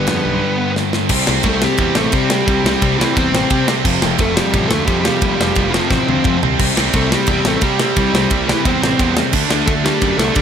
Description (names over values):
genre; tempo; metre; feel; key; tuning
punk rock; 175 BPM; 4/4; straight; unclear; A4 = 440 Hz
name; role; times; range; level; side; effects
bluesy overdriven lead guitar; melody; 0.0-10.4 s; E3 to C5; -20 LUFS; equal; distortion
high-gain distorted guitar; riff; 0.0-10.4 s; F2 to D4; -24 LUFS; equal; distortion
sludgy distorted guitar; riff; 0.0-10.4 s; F2 to D4; -22 LUFS; left 11 dB; overdrive
tight distorted guitar; riff; 0.0-10.4 s; F2 to D4; -21 LUFS; right 17 dB; distortion
fuzz picked electric bass; bass; 0.0-10.4 s; F1 to D3; -21 LUFS; equal; overdrive
tight metal drum kit; drums; 0.1-10.4 s; crash cymbal, kick drum, ride cymbal, snare drum, toms; -18 LUFS; equal; none
room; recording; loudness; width
little or no reverb; none; -13 LUFS; side -8 dB against mid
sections
0.0-1.1 A section; 1.1-10.4 B section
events
half time 0.0-1.1; drum fill 0.8-1.1, 5.9-6.6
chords
0.0 G; 1.1 C5; 3.8 F; 6.4 C; 9.3 D5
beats
0.08 0.42 0.76 | 1.10 1.45 1.79 2.13 | 2.48 2.82 3.16 3.50 | 3.85 4.19 4.53 4.88 | 5.22 5.56 5.91 6.25 | 6.59 6.93 7.28 7.62 | 7.96 8.31 8.65 8.99 | 9.34 9.68 10.02 10.37